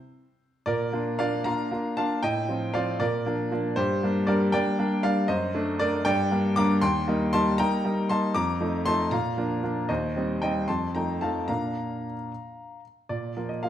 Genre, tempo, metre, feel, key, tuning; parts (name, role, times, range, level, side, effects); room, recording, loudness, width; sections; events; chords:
classical-period piano sonatina; 78 BPM (dotted quarters); 6/8; straight; Bb major; A4 = 441 Hz
bright baby grand piano; solo; 0.7-13.7 s; Eb2 to D6; -24 LUFS; equal
wet recital hall reverb, RT60 1.2 s; -24 LUFS; side -11 dB against mid
0.7-13.1 A section
0.0 N.C.; 0.7 Bb; 2.2 F/A; 3.0 Bb; 3.8 Gm; 5.3 D/F#; 6.1 Gm; 6.8 Cm7/Eb; 8.3 F7; 9.1 Bb; 9.9 Cm/Eb; 10.7 F7; 11.5 Bb; 13.1 Bb5